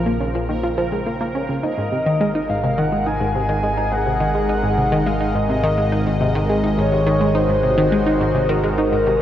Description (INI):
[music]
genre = ambient, sequencer-driven space music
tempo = 105 BPM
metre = 4/4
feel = straight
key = unclear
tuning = A4 = 440 Hz
[part]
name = phased analog pad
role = sustained chords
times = 0.0-9.2 s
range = C3 to Eb5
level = -24 LUFS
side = left 1 dB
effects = phaser, chorus
[part]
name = fat analog bass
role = bass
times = 0.0-9.2 s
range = Ab1 to Bb1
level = -25 LUFS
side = equal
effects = none
[part]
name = bubbling stepped-filter texture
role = texture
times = 0.0-9.2 s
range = Bb4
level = -31 LUFS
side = right 3 dB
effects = chorus, built-in reverb
[part]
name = analog pluck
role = riff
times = 0.1-9.1 s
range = Ab2 to Eb4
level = -21 LUFS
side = equal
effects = chorus, phaser, ping-pong delay
[part]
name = breathy flute-like synth lead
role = melody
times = 1.6-9.2 s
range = Bb4 to Ab5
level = -21 LUFS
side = left 1 dB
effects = wide subtle chorus, ping-pong delay
[sound]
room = wet huge ambient reverb, RT60 8.2 s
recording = worn, warbling old tape, cassette tape, warbly pitch drift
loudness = -17 LUFS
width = side -11 dB against mid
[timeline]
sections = 0.0-9.2 A section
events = fade-in on analog synth pad 0.0-9.2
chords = 0.0 Bbmadd9; 1.6 Ab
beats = 0.49 1.06 | 1.64 2.21 2.78 3.35 | 3.92 4.49 5.06 5.64 | 6.21 6.78 7.35 7.92 | 8.49 9.06